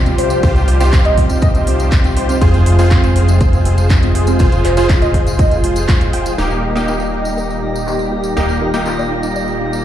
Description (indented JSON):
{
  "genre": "progressive house",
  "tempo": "121 BPM",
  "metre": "4/4",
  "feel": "straight",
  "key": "unclear",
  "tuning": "A4 = 440 Hz",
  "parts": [
    { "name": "lush unison pad", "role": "sustained chords", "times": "0.0-9.8 s", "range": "Bb2 to Ab4", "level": "-21 LUFS", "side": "equal", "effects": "chorus, sidechain pumping" },
    { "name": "supersaw stab", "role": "stabs", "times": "0.0-9.8 s", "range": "Bb3 to C5", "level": "-20 LUFS", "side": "equal", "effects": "sidechain pumping, ping-pong delay" },
    { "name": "plucky analog bass", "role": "bass", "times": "0.0-9.8 s", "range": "Eb1 to C2", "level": "-16 LUFS", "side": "equal", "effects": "sidechain pumping" },
    { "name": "soft round pluck", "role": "arpeggios", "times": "0.1-9.7 s", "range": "Bb3 to G5", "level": "-21 LUFS", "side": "right 1 dB", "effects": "ensemble chorus, sidechain pumping, ping-pong delay" },
    { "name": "house drum kit", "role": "drums", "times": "0.1-9.0 s", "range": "crash cymbal, handclaps, hi-hat", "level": "-25 LUFS", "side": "right 1 dB", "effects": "low-pass filter on hats, low-pass filter on snare, low-pass filter on cymbals" },
    { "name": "tambourine", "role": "percussion", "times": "0.1-9.8 s", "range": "none", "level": "-33 LUFS", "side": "left 2 dB", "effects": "none" },
    { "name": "electronic kick drum", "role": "drums", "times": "0.4-6.0 s", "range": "none", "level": "-13 LUFS", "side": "equal", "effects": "none" },
    { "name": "drifting glass-harmonics texture", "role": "texture", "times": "7.0-9.8 s", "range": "Bb6", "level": "-29 LUFS", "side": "right 4 dB", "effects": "chorus, built-in reverb, sidechain pumping" }
  ],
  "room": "light reverb",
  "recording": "played on a big sound system in a bare room, large studio reverb",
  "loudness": "-11 LUFS",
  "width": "side -11 dB against mid",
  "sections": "0.0-6.4 A section; 6.4-9.8 B section",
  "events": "none",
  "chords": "0.0 Csus4; 2.4 Fm; 6.4 Eb"
}